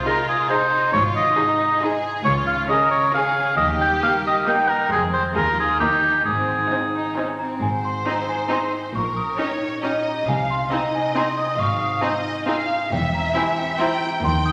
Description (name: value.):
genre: cinematic.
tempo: 136 BPM.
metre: 3/4.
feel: straight.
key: Ab major.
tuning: A4 = 440 Hz.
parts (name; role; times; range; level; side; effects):
rich studio violin section; second line; 0.0-13.9 s; C4 to Eb5; -32 LUFS; equal; none.
concert harp; arpeggios; 0.0-14.5 s; Ab2 to Eb5; -32 LUFS; equal; none.
rich studio violin section; melody; 0.1-14.5 s; Bb4 to Eb6; -29 LUFS; equal; none.
warm oboe; second line; 0.1-7.1 s; G4 to G5; -21 LUFS; equal; none.
rich studio viola section; accompaniment; 0.1-13.9 s; Ab3 to Ab4; -30 LUFS; equal; none.
rich studio double bass section; bass; 0.9-14.5 s; E1 to Eb2; -33 LUFS; equal; none.
warm studio cello section; bass; 0.9-14.5 s; Db2 to C3; -33 LUFS; equal; none.
celesta; melody; 7.4-14.5 s; G5 to Eb6; -28 LUFS; equal; none.
room: wet scoring stage reverb, RT60 1.7 s.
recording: none.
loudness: -21 LUFS.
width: mono.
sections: 0.0-7.6 A section; 7.6-14.5 A section.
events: none.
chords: 0.0 Ab/C; 0.9 Ab; 2.3 Db; 3.6 Eb; 4.9 Fm; 5.4 Ab/Eb; 5.8 Eb; 6.3 Ab; 8.9 Eb7/Bb; 10.3 Ab/C; 11.6 Ab; 12.9 C/E.